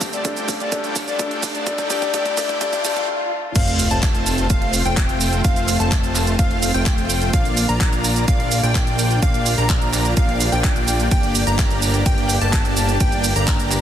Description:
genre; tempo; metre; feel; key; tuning
EDM, festival progressive house; 127 BPM; 4/4; straight; F major; A4 = 440 Hz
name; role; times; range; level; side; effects
felt-muted upright piano; accompaniment; 0.0-3.6 s; G2 to A4; -30 LUFS; left 4 dB; sidechain pumping, tape echo
lush unison pad; sustained chords; 0.0-13.8 s; D2 to A4; -30 LUFS; equal; chorus, sidechain pumping
dense compressed supersaw; riff; 0.0-13.8 s; A3 to Bb5; -24 LUFS; equal; sidechain pumping, tape echo
electronic kick drum; drums; 0.0-13.6 s; none; -20 LUFS; equal; none
house drum kit; drums; 0.0-13.8 s; crash cymbal, handclaps, hi-hat, ride cymbal, shaker; -24 LUFS; right 3 dB; none
riser, swell and sub drop; sound effects; 0.0-5.4 s; none; -28 LUFS; equal; none
vibraphone with soft mallets; melody; 0.1-3.0 s; D5; -25 LUFS; left 4 dB; tape echo
plucky unison lead; arpeggios; 3.6-13.8 s; F5 to Bb5; -25 LUFS; equal; sidechain pumping, tape echo
fat analog bass; bass; 3.6-13.8 s; F1 to Bb1; -22 LUFS; equal; sidechain pumping
room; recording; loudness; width
light reverb; dense, heavily limited modern master, high-pass filter; -16 LUFS; side -10 dB against mid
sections
0.0-3.6 A section; 3.6-13.8 B section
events
build-up 0.0-3.6; drum fill 0.0-3.1; riser 0.0-3.1; swell 2.6-3.6; stop 3.1-3.6; drop 3.6-13.8; impact 3.6-5.4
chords
0.0 Dm; 3.6 F; 7.3 Bb; 11.1 Gm

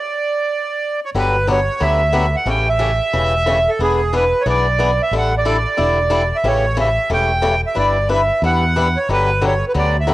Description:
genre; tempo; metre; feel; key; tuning
acoustic string swing (jazz manouche); 181 BPM; 4/4; swing 59% on 8ths; unclear; A4 = 440 Hz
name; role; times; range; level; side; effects
accordion; melody; 0.0-10.1 s; G#4 to G5; -17 LUFS; right 2 dB; cassette tape
picked swing-style acoustic guitar; accompaniment; 1.1-10.1 s; C#3 to B4; -20 LUFS; left 3 dB; none
mellow fretless electric bass; bass; 1.1-10.1 s; E1 to E2; -20 LUFS; equal; none
room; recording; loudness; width
light reverb, small room reverb; home recording on cassette; -14 LUFS; side -16 dB against mid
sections
0.0-1.2 A section; 1.2-10.1 B section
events
stop 0.0-1.2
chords
0.0 N.C.; 1.2 Gmaj7; 2.5 A7; 3.8 E7; 5.1 A7sus4; 6.4 A7; 7.8 Em7/G; 9.1 Gmaj7

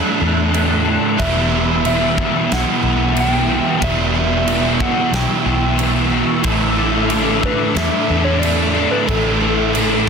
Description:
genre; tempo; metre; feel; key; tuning
rock, shoegaze and dream pop; 91 BPM; 4/4; straight; unclear; A4 = 440 Hz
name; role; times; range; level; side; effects
phased analog pad; sustained chords; 0.0-10.1 s; A4 to F#6; -26 LUFS; left 1 dB; phaser, chorus
picked twelve-string acoustic guitar; arpeggios; 0.0-10.1 s; E3 to A4; -27 LUFS; left 11 dB; lush chorus, analog delay
crunchy overdriven guitar; riff; 0.0-10.1 s; E2 to E4; -20 LUFS; right 13 dB; reverse reverb
thick fuzz guitar; riff; 0.0-10.1 s; E2 to A3; -20 LUFS; left 12 dB; distortion, ensemble chorus
vintage muted fingered electric bass; bass; 0.2-10.1 s; E1 to E2; -21 LUFS; equal; none
gated 80s drum kit; drums; 0.5-9.9 s; crash cymbal, kick drum, snare drum; -24 LUFS; right 2 dB; none
soft struck synth lead; melody; 1.2-10.1 s; A4 to G5; -24 LUFS; equal; chorus, analog delay
room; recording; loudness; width
studio ambience; dense, heavily limited modern master; -14 LUFS; side -6 dB against mid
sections
0.0-10.1 A section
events
none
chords
0.0 Asus4; 1.2 Emadd9; 6.4 Asus4

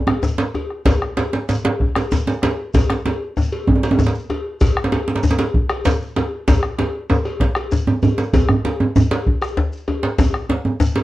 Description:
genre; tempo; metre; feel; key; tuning
west african traditional, West African drum ensemble; 129 BPM (dotted quarters); 12/8; straight; none; none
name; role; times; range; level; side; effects
bombo; percussion; 0.1-10.5 s; none; -19 LUFS; equal; none
cowbell; percussion; 0.1-11.0 s; none; -26 LUFS; left 1 dB; none
djembe; percussion; 0.1-10.9 s; none; -21 LUFS; left 2 dB; none
djembe; percussion; 0.1-11.0 s; none; -18 LUFS; right 2 dB; none
shekere; percussion; 0.2-10.9 s; none; -28 LUFS; left 1 dB; none
room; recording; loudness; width
moderate studio reverb, RT60 0.6 s; worn, warbling old tape, cassette tape, warbly pitch drift; -16 LUFS; side -16 dB against mid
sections
0.9-11.0 A section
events
drum fill 0.0-0.9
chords
none

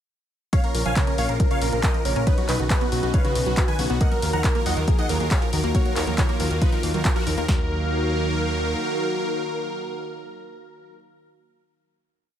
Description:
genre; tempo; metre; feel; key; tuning
uplifting trance; 138 BPM; 4/4; straight; Eb minor; A4 = 440 Hz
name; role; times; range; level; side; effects
supersaw chords; melody; 0.5-10.9 s; D#4 to Bb5; -29 LUFS; equal; sidechain pumping, ping-pong delay
warm baby grand piano; second line; 0.5-11.0 s; F#4 to Bb5; -38 LUFS; equal; none
warm velvety synth lead; second line; 0.5-10.9 s; F4 to Db5; -31 LUFS; equal; chorus, ping-pong delay
lush unison pad; sustained chords; 0.5-10.9 s; Db3 to F5; -31 LUFS; equal; chorus, vintage 12-bit sampler grit, sidechain pumping
wide unison pluck; arpeggios; 0.5-7.7 s; Db3 to Db4; -31 LUFS; moving between left 3 dB and right 6 dB; auto-pan, sidechain pumping, ping-pong delay
punchy analog drum machine; drums; 0.5-7.6 s; kick drum, snare drum; -22 LUFS; equal; none
punchy analog drum machine; drums; 0.5-7.5 s; handclaps, hi-hat; -29 LUFS; left 1 dB; none
fat analog bass; bass; 0.7-8.7 s; Bb1 to Eb2; -26 LUFS; equal; sidechain pumping
room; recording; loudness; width
light reverb; none; -20 LUFS; side -10 dB against mid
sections
0.5-7.5 drop; 7.5-11.0 final chord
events
drop 0.5-7.5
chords
0.5 Bbm; 2.3 Badd9; 4.0 Ebmadd9

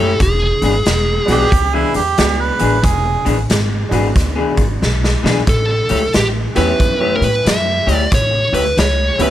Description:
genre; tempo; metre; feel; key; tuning
electric blues shuffle; 91 BPM; 4/4; swing 63% on 8ths; E mixolydian; A4 = 440 Hz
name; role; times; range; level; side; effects
smooth overdriven lead guitar; melody; 0.0-1.5, 5.5-9.3 s; G4 to E5; -17 LUFS; equal; none
clear baby grand piano; accompaniment; 0.0-9.3 s; G3 to G4; -23 LUFS; right 4 dB; none
electric guitar through a small old amp; riff; 0.0-9.3 s; E3 to C#5; -20 LUFS; left 5 dB; none
upright bass; bass; 0.0-9.3 s; E1 to A2; -18 LUFS; equal; none
raw garage drum kit; drums; 0.2-9.3 s; hi-hat, kick drum, snare drum; -18 LUFS; equal; none
warm harmonica; second line; 1.3-3.5 s; E4 to B4; -18 LUFS; right 6 dB; overdrive
room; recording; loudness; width
light reverb; none; -13 LUFS; side -12 dB against mid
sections
0.0-9.3 A section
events
drum fill 4.8-5.5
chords
0.2 E7; 5.5 A7

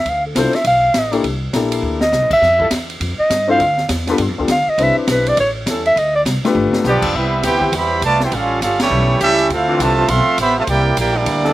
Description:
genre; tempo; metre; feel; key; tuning
jazz, big band swing; 203 BPM; 4/4; swing 62% on 8ths; C major; A4 = 443 Hz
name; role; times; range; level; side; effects
mellow clarinet; melody; 0.0-6.2 s; G4 to F5; -14 LUFS; equal; slapback echo
upright bass; bass; 0.0-11.5 s; F1 to G2; -22 LUFS; equal; none
open jazz drum kit; drums; 0.1-11.5 s; crash cymbal, hi-hat, kick drum, ride cymbal, snare drum, toms; -23 LUFS; equal; none
warm grand piano; accompaniment; 0.4-6.8 s; A3 to B4; -18 LUFS; left 4 dB; none
bright trombone section; sustained chords; 2.6-11.5 s; E3 to C5; -20 LUFS; left 1 dB; none
warm trumpet section; melody; 6.9-11.5 s; A3 to C6; -16 LUFS; right 2 dB; none
brilliant trombone section; second line; 6.9-11.5 s; C3 to G4; -20 LUFS; right 2 dB; slapback echo
room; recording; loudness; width
little or no reverb; recorded outdoors, with no room sound; -13 LUFS; side -15 dB against mid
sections
0.0-7.1 A section; 7.1-11.5 B section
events
clarinet solo 0.0-7.1; drum fill 1.8, 6.5; band accent 8.8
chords
0.1 Dm9; 1.2 C13; 2.4 Fmaj9; 3.6 Dmadd9; 4.2 G7; 4.8 Cmaj7; 5.4 A7; 6.0 Dm7; 6.5 G7; 7.1 Cmaj7; 8.3 A7b13; 9.5 Dm9; 10.7 C9

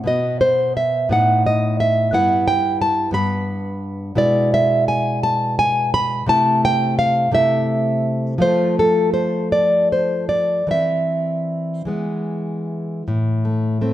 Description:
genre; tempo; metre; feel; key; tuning
romantic piece for solo classical guitar; 50-60 BPM (dotted quarters); 6/8; rubato; E minor, A minor from 4.2 s; A4 = 440 Hz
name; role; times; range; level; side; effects
nylon-string guitar; solo; 0.0-13.9 s; G2 to B5; -16 LUFS; equal; none
room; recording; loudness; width
moderate recital hall reverb, RT60 1.5 s; none; -16 LUFS; side -13 dB against mid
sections
0.0-13.1 A section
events
none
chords
0.1 B5; 1.1 B7/A; 2.1 Em/G; 4.2 E/B; 6.3 Am/C; 8.4 F; 10.7 Am/E (rootless); 11.9 E; 13.1 Am

